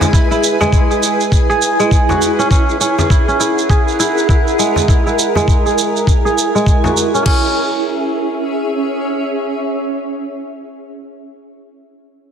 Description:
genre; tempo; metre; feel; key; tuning
organic downtempo; 101 BPM; 4/4; swing 59% on 16ths; C# minor pentatonic; A4 = 440 Hz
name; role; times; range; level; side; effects
granular cloud pad; sustained chords; 0.0-10.4 s; C#4 to G#5; -18 LUFS; equal; built-in reverb, sidechain pumping
kora; arpeggios; 0.0-9.0 s; G#3 to G#4; -17 LUFS; right 2 dB; low-pass filter, digital delay
electronic shaker and crash cymbal; drums; 0.0-7.4 s; none; -22 LUFS; right 5 dB; soft clipping on snare
frame drum; percussion; 0.0-6.9 s; none; -20 LUFS; left 2 dB; none
electronic kick drum; drums; 0.1-7.4 s; none; -12 LUFS; equal; none
room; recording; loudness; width
moderate lush hall reverb, RT60 2.4 s; dense, heavily limited modern master; -12 LUFS; side -8 dB against mid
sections
0.0-7.3 A section; 7.3-9.6 B section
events
filter sweep on kora 0.0-7.3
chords
0.0 E; 2.5 F#9; 7.3 C#m

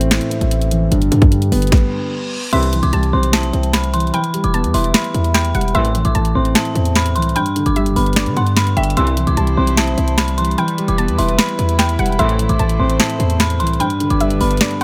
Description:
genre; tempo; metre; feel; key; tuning
hip hop, trap; 149 BPM; 4/4; half-time; G major; A4 = 441 Hz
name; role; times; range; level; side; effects
dark grand piano; accompaniment; 0.0-14.8 s; G2 to E5; -22 LUFS; equal; none
hard-hitting 808-style bass; bass; 0.0-14.6 s; E1 to D3; -20 LUFS; equal; none
trap drum kit; drums; 0.0-14.8 s; crash cymbal, finger snaps, hi-hat, kick drum, snare drum; -21 LUFS; equal; none
reverse cymbal; sound effects; 1.8-2.5 s; none; -32 LUFS; equal; none
dark detuned synth bell; melody; 2.5-14.8 s; G5 to D6; -24 LUFS; equal; chorus, delay
warbly dusty pluck; second line; 2.5-14.8 s; D5 to A5; -28 LUFS; equal; chorus, delay
clear brass ensemble; stabs; 2.5-2.8, 5.7-6.0, 9.0-9.3, 12.2-12.5 s; C2 to E3; -28 LUFS; equal; none
warm chamber string section; sustained chords; 9.0-14.8 s; G3 to C5; -29 LUFS; equal; none
room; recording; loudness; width
digital ambience; none; -16 LUFS; mono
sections
0.0-2.5 A section; 2.5-14.8 B section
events
break 0.0-2.5; stop 1.7-2.5; reverse cymbal 1.8-2.5; kick muted 14.6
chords
0.0 Am; 0.9 G; 2.5 C; 4.1 Em; 5.7 Am; 7.4 G; 9.0 C; 10.6 Em; 12.2 Am; 13.8 G

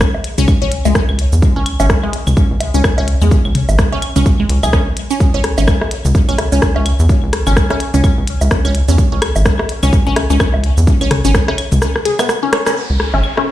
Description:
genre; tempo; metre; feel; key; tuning
minimal techno; 127 BPM; 4/4; swing 58% on 16ths; C# minor; A4 = 440 Hz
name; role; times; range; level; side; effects
electronic kick drum; drums; 0.0-11.5 s; none; -14 LUFS; equal; none
minimal click drum kit; drums; 0.0-12.7 s; hi-hat, rim click, shaker; -20 LUFS; equal; low-pass filter on hats, low-pass filter on perc, low-pass filter on snare
booming analog drum machine; percussion; 0.1-13.5 s; claves, rim click, toms, woodblock; -20 LUFS; left 1 dB; ping-pong delay
resonant blip pluck; riff; 0.4-13.4 s; G#3 to C#5; -20 LUFS; left 1 dB; phaser, sidechain pumping, ping-pong delay
rubbery square bass; bass; 0.4-13.2 s; G#1 to E2; -13 LUFS; equal; sidechain pumping
downlifter; sound effects; 12.8-13.5 s; none; -26 LUFS; right 1 dB; none
room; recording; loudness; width
light reverb; played on a big sound system in a bare room, stone room reverb; -11 LUFS; side -14 dB against mid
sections
0.0-12.8 A section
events
break 11.8-12.8; drum fill 11.8-12.8; band accent 12.6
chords
none

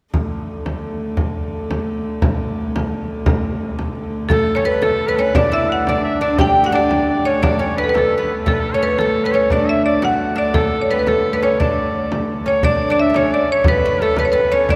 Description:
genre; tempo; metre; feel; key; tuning
medieval dance; 115 BPM (dotted quarters); 6/8; straight; D major; A4 = 440 Hz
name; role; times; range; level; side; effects
dark hurdy-gurdy; drone; 0.1-14.8 s; D3 to A3; -28 LUFS; equal; none
frame drum; percussion; 0.1-14.8 s; none; -24 LUFS; equal; none
marimba with hard mallets; melody; 4.3-14.8 s; A4 to G5; -20 LUFS; equal; none
bright shawm; second line; 4.3-14.8 s; A4 to G5; -27 LUFS; equal; none
oud; second line; 4.3-14.8 s; A3 to G4; -24 LUFS; equal; none
room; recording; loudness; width
wet cathedral reverb, RT60 4.4 s; recorded in a church or concert hall; -18 LUFS; mono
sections
0.1-4.3 A section; 4.3-12.6 B section; 12.6-14.8 C section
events
none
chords
none

